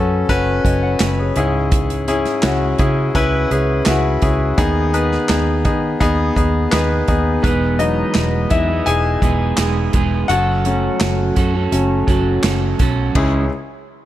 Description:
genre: piano-driven pop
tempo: 84 BPM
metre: 4/4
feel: straight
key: C# minor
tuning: A4 = 436 Hz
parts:
  - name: clear concert grand piano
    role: accompaniment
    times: 0.0-13.5 s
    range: C#2 to G#5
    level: -18 LUFS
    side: left 3 dB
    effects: none
  - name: vintage muted fingered electric bass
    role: bass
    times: 0.0-13.5 s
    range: E1 to D#3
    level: -20 LUFS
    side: right 1 dB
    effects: none
  - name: natural country drum kit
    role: drums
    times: 0.3-13.3 s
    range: handclaps, hi-hat, kick drum, ride cymbal, snare drum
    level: -20 LUFS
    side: right 1 dB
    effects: none
  - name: electric guitar at the edge of break-up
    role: riff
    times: 7.4-13.4 s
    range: C#3 to A4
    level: -21 LUFS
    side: right 5 dB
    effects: lush chorus
room: light reverb, studio ambience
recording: none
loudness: -14 LUFS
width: side -13 dB against mid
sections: 0.0-7.4 A section; 7.4-13.2 B section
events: grand piano solo 7.4-13.2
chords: 0.0 F#m; 1.4 C#m; 4.6 G#m/D#; 7.4 Emaj7; 10.3 F#m; 13.2 C#m

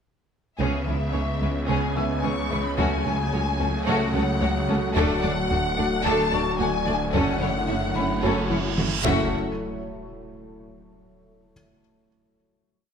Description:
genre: cinematic, hybrid orchestral and electronic film score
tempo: 110 BPM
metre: 4/4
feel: straight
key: F# minor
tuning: A4 = 444 Hz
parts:
  - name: dark symphonic violin section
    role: melody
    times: 0.6-9.4 s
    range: E5 to C#6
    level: -30 LUFS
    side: left 4 dB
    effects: none
  - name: warm symphonic violin section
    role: second line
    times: 0.6-9.4 s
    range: A3 to F#5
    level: -29 LUFS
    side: left 3 dB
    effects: none
  - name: warm symphonic viola section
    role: accompaniment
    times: 0.6-9.4 s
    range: A3 to D4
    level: -31 LUFS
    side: right 1 dB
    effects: none
  - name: analog drone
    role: sustained chords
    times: 1.1-9.4 s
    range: F#3 to D5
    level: -33 LUFS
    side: equal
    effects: chorus
  - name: dark French horn section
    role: sustained chords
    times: 0.6-9.3 s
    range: A3 to F#4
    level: -33 LUFS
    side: left 3 dB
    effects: none
  - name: dark trombone section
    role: sustained chords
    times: 0.6-9.3 s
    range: C#3 to G#3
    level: -33 LUFS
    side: right 3 dB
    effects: none
  - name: resonant blip pluck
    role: arpeggios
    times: 0.6-8.9 s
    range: C#3 to F#4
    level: -34 LUFS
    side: right 2 dB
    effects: none
  - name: snarling distorted saw bass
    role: bass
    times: 0.6-9.4 s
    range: D1 to C#2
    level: -30 LUFS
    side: equal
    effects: distortion
  - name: warm symphonic cello section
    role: bass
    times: 0.6-9.4 s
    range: C#2 to F#2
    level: -33 LUFS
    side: right 3 dB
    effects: none
  - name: warm symphonic double bass section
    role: bass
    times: 0.6-9.4 s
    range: F#1 to D2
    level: -33 LUFS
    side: right 4 dB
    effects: none
  - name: taiko ensemble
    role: drums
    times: 0.6-10.1 s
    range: none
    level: -30 LUFS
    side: left 1 dB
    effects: none
  - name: warm concert grand piano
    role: texture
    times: 1.1-9.4 s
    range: E5 to E6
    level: -37 LUFS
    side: left 1 dB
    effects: ping-pong delay
  - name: reverse cymbal and impact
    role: sound effects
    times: 8.1-11.2 s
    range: none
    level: -34 LUFS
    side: right 3 dB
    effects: none
room: wet recital hall reverb, RT60 1.5 s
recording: none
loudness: -21 LUFS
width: side -7 dB against mid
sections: 0.6-9.3 theme; 9.3-11.5 final hit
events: reverse cymbal 8.1-9.3; drum fill 8.5-9.3; impact 9.3-11.5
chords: 0.6 C#m7; 2.8 F#m/C#; 5.0 D; 7.1 F#m7; 9.3 N.C.

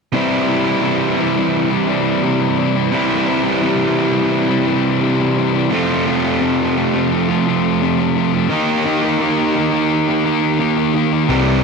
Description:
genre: rock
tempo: 86 BPM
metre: 4/4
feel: straight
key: unclear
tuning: A4 = 438 Hz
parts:
  - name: distorted electric guitar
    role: riff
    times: 0.1-11.6 s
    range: F2 to G4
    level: -17 LUFS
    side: left 11 dB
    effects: distortion
  - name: overdriven electric guitar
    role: riff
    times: 0.1-11.6 s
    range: F2 to G4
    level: -17 LUFS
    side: right 9 dB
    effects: none
  - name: fuzz fingered electric bass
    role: bass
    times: 11.3-11.6 s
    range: C2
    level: -18 LUFS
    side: left 1 dB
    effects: overdrive
room: moderate plate reverb, RT60 2.9 s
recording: 1960s-style stereo with parts hard left and right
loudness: -14 LUFS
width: side -4 dB against mid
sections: 0.1-11.3 A section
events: none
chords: 0.1 C; 5.7 F; 8.5 Eb

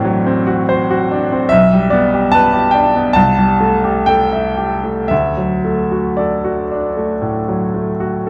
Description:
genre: classical, romantic nocturne for solo piano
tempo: 55-74 BPM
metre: 4/4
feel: rubato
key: unclear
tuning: A4 = 441 Hz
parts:
  - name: bright baby grand piano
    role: solo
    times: 0.0-8.3 s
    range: A1 to A5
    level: -15 LUFS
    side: equal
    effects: none
room: moderate recital hall reverb, RT60 1.6 s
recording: worn, warbling old tape, cassette tape, warbly pitch drift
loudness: -15 LUFS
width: mono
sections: 0.0-8.3 A section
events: none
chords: 0.0 D7/A; 1.5 G/B; 3.2 Am7/C; 5.1 D

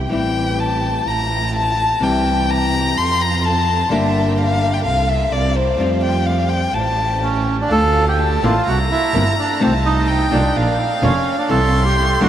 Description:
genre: tango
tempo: 127 BPM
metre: 4/4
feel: rubato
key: F major, D minor from 7.7 s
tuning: A4 = 440 Hz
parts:
  - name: nylon-string guitar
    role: accompaniment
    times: 0.0-12.3 s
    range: C3 to G4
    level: -23 LUFS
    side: left 3 dB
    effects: none
  - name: warm violin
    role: second line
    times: 0.1-12.3 s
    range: C5 to C6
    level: -20 LUFS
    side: left 2 dB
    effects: none
  - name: dark symphonic string section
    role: stabs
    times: 0.1-12.3 s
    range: A3 to Bb4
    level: -28 LUFS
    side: right 3 dB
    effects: analog delay
  - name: rich double bass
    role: bass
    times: 0.1-12.3 s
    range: F1 to F2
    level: -20 LUFS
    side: right 1 dB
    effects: none
  - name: bandoneon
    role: melody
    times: 7.2-12.3 s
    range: C4 to A4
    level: -18 LUFS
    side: right 3 dB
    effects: analog delay
room: wet huge ambient reverb, RT60 7.0 s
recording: dreamy mix soaked in reverb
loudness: -15 LUFS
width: side -10 dB against mid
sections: 0.0-7.7 A section; 7.7-12.3 B section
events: violin solo 0.0-7.7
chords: 0.1 Am7; 1.1 Fmaj7/A; 2.0 C; 3.0 F; 3.9 Gm; 4.8 F/C; 5.3 C7; 5.8 Fadd9; 6.7 A7; 7.7 Dm; 8.7 C7; 9.6 F7/C; 10.6 Bb; 11.5 C

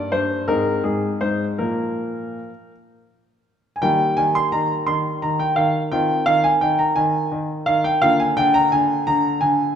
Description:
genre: classical-period piano sonatina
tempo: 53-58 BPM (dotted quarters)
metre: 6/8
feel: rubato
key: Eb major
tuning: A4 = 435 Hz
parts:
  - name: clear concert grand piano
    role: solo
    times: 0.0-9.8 s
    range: G2 to C6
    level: -17 LUFS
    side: equal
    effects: none
room: wet recital hall reverb, RT60 1.7 s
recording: minimal, uncompressed stereo recording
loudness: -17 LUFS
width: side -8 dB against mid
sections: 0.0-3.8 A section; 3.8-9.8 B section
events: none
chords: 0.5 Ab; 1.6 Bb5; 3.8 Eb; 8.0 Bb/D

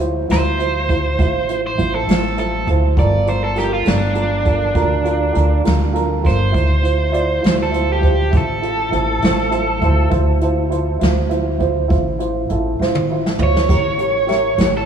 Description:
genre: slow blues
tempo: 67 BPM (dotted quarters)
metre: 12/8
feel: straight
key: D minor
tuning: A4 = 440 Hz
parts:
  - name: warm upright piano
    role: accompaniment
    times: 0.0-14.8 s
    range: E4 to E5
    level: -21 LUFS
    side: right 3 dB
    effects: wide subtle chorus
  - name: upright bass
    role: bass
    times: 0.0-14.9 s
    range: G1 to D2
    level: -19 LUFS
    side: equal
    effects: none
  - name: overdriven electric guitar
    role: melody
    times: 0.3-14.9 s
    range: D4 to D5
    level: -20 LUFS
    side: right 1 dB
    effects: analog delay
  - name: jazz brush drum kit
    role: drums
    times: 0.3-14.7 s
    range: hi-hat, kick drum, snare drum, splash cymbal, toms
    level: -20 LUFS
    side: equal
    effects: none
room: moderate church reverb, RT60 3.5 s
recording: dreamy mix soaked in reverb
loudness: -14 LUFS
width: side -8 dB against mid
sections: 0.0-14.9 A section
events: overdriven electric guitar solo 0.0-14.9; drum fill 12.8-13.7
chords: 0.0 Dm9; 3.0 Gm9; 6.5 Dm9; 13.7 A7b9

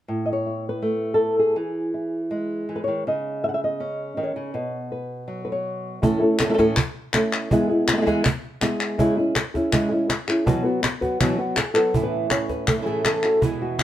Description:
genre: flamenco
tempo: 162 BPM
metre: 4/4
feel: straight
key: unclear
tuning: A4 = 442 Hz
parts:
  - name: flamenco guitar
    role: melody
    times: 0.1-13.8 s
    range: A2 to F#5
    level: -22 LUFS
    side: equal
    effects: none
  - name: cajon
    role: percussion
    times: 6.0-13.8 s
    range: none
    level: -25 LUFS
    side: right 2 dB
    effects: none
  - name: palmas hand claps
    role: percussion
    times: 6.4-13.8 s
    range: none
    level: -25 LUFS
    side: left 4 dB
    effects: none
  - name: flamenco guitar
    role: stabs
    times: 11.9-13.8 s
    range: E2 to E4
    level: -28 LUFS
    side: right 7 dB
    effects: none
room: light reverb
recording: none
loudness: -20 LUFS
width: side -12 dB against mid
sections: 0.1-6.0 A section; 6.0-11.9 B section; 11.9-13.8 C section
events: none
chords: 0.1 A; 1.6 E; 3.1 C#sus2; 4.5 B5; 6.0 A; 7.5 E; 9.0 C#m; 10.5 Bsus4; 11.9 A

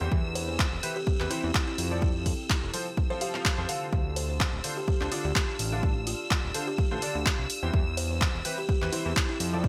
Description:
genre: piano house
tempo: 126 BPM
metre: 4/4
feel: swing 54% on 16ths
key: unclear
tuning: A4 = 439 Hz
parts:
  - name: rich studio violin section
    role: sustained chords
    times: 0.0-9.7 s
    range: E6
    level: -41 LUFS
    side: equal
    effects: sidechain pumping
  - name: clear grand piano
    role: riff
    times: 0.0-9.7 s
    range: D3 to F5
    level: -38 LUFS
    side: equal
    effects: analog chorus, sidechain pumping, digital delay
  - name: fat analog bass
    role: bass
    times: 0.0-9.7 s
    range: D1 to F2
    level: -34 LUFS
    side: equal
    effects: sidechain pumping
  - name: deep dark ambient pad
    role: texture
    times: 0.0-9.7 s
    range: C4 to C6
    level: -45 LUFS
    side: equal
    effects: none
  - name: electronic kick drum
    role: drums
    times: 0.1-9.7 s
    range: none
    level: -30 LUFS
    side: equal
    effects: overdrive, studio reverb
  - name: buzzing kalimba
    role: melody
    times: 0.4-9.5 s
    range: E4 to C5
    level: -38 LUFS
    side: equal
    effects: digital delay
  - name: punchy analog drum machine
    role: drums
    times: 0.4-9.5 s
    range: handclaps, hi-hat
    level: -34 LUFS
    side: equal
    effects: overdrive, studio reverb, gated reverb
room: small room ambience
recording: bright 1980s-style digital production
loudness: -28 LUFS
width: mono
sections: 0.0-9.7 A section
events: none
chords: 0.0 Cmaj7/E; 1.8 F; 3.9 Dm7; 7.5 Cmaj7/E

